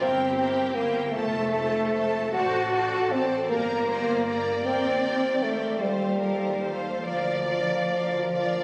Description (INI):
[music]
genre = classical, slow romantic movement for symphony orchestra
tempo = 51 BPM (dotted quarters)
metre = 6/8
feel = uneven beats, rubato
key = Bb major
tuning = A4 = 441 Hz
[part]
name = warm symphonic violin section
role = melody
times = 0.0-8.6 s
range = G4 to D5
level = -34 LUFS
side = equal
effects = none
[part]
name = warm symphonic violin section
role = second line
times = 0.0-8.6 s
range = C5 to Bb5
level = -37 LUFS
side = equal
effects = none
[part]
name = dark bassoon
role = accompaniment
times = 0.0-8.6 s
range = F3 to F#4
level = -29 LUFS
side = equal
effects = none
[part]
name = warm symphonic viola section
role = accompaniment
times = 0.0-8.6 s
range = E4 to C5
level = -40 LUFS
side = equal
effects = none
[part]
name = rich symphonic cello section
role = bass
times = 0.0-8.6 s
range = F3 to F#4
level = -32 LUFS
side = equal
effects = none
[part]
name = rich symphonic double bass section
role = bass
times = 0.0-8.6 s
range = F1 to Eb2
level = -39 LUFS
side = equal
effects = none
[sound]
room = moderate scoring stage reverb, RT60 1.9 s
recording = recorded on a phone in the room, studio reverb, compression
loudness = -26 LUFS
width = mono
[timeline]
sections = 0.0-8.6 A section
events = none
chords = 0.0 C7/G; 1.1 F; 2.3 D7/A; 3.5 Gm; 4.7 Cm7/Eb; 5.8 F7/Eb; 7.1 Bb/D